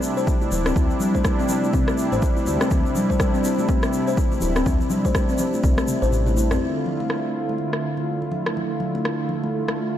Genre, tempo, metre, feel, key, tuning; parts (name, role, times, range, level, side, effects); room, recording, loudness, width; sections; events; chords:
afro house; 123 BPM; 4/4; swing 59% on 16ths; D minor; A4 = 440 Hz
warm analog pad; sustained chords; 0.0-10.0 s; C3 to F4; -26 LUFS; right 2 dB; chorus, tremolo, sidechain pumping
egg shaker; percussion; 0.0-6.6 s; -36 LUFS; left 3 dB
buzzing kalimba; arpeggios; 0.2-6.6 s; G3 to C5; -24 LUFS; left 2 dB; sidechain pumping, tape echo
congas; percussion; 0.2-9.8 s; -30 LUFS; left 2 dB
electronic kick drum; drums; 0.3-5.8 s; -22 LUFS; equal
smooth synth bass; bass; 0.5-6.6 s; D1 to D2; -24 LUFS; equal; sidechain pumping
deep house drum kit; drums; 0.7-9.8 s; rim click, toms; -30 LUFS; left 1 dB; low-pass filter on snare, low-pass filter on toms, low-pass filter on room
light reverb, digital ambience; dry, gritty hardware recording; -19 LUFS; side -11 dB against mid
0.0-6.6 A section; 6.6-10.0 B section
drum fill 5.9-6.6; kick drops out 6.1-6.6
0.0 Cadd9/D; 6.6 Dm